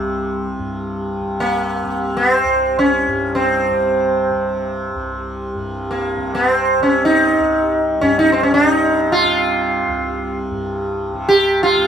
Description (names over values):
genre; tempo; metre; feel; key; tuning
indian classical, Hindustani; free time; none; none; C raga bhairavi; A4 = 441 Hz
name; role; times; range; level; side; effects
sitar; melody; 0.0-11.9 s; G3 to G4; -15 LUFS; right 1 dB; none
tanpura; drone; 0.0-11.9 s; C2 to C3; -22 LUFS; equal; none
room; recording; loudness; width
moderate studio reverb, RT60 0.6 s; band playing live in one room; -15 LUFS; side -8 dB against mid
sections
0.0-11.9 A section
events
none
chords
none